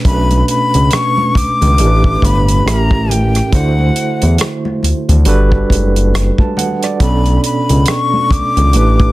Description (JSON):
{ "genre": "R&B, neo-soul", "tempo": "69 BPM", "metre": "4/4", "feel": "swing 60% on 16ths", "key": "B minor", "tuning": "A4 = 440 Hz", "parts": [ { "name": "barky tine electric piano", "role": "accompaniment", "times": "0.0-9.1 s", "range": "A2 to A5", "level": "-17 LUFS", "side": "right 3 dB", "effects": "overdrive, fast tremolo" }, { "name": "damped 70s drum kit", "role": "drums", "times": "0.0-9.1 s", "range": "hi-hat, kick drum, rim click", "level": "-15 LUFS", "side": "equal", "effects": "soft clipping on snare" }, { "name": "breathy bright jazz flute", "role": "melody", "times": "0.1-9.1 s", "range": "F#5 to D6", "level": "-17 LUFS", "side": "left 3 dB", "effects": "slapback echo, plate reverb" }, { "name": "smooth gliding synth bass", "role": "bass", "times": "0.1-9.1 s", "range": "F#1 to E2", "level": "-12 LUFS", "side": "equal", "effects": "none" }, { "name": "congas", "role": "percussion", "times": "0.3-9.1 s", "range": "none", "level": "-24 LUFS", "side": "left 2 dB", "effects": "none" } ], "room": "light reverb", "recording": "dense, heavily limited modern master", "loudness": "-10 LUFS", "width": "side -17 dB against mid", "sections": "0.0-9.1 A section", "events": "none", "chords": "0.0 Bm9; 1.8 A7sus4; 2.7 A7b9; 3.5 D7; 5.3 Gmaj7; 7.0 Bm9" }